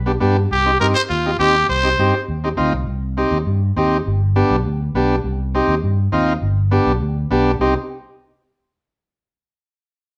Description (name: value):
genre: latin, cumbia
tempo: 203 BPM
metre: 4/4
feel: straight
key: C harmonic minor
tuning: A4 = 440 Hz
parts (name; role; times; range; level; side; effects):
- fingered electric bass; bass; 0.0-7.7 s; G1 to G2; -22 LUFS; equal; none
- combo organ; accompaniment; 0.1-7.7 s; B3 to G4; -21 LUFS; equal; none
- growling trumpet; melody; 0.5-2.2 s; F4 to C5; -19 LUFS; equal; none
room: wet stone room reverb, RT60 1.0 s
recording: band playing live in one room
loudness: -18 LUFS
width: mono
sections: 0.0-2.9 A section; 2.9-7.6 B section; 7.6-8.8 C section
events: none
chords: 0.0 G; 0.5 Cm; 4.1 G; 5.2 Cm; 6.4 G; 7.6 Cm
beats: 0.22 | 0.51 0.81 1.10 1.40 | 1.70 1.99 2.29 2.58 | 2.88 3.17 3.47 3.76 | 4.06 4.35 4.65 4.95 | 5.24 5.54 5.83 6.13 | 6.42 6.72 7.01 7.31 | 7.60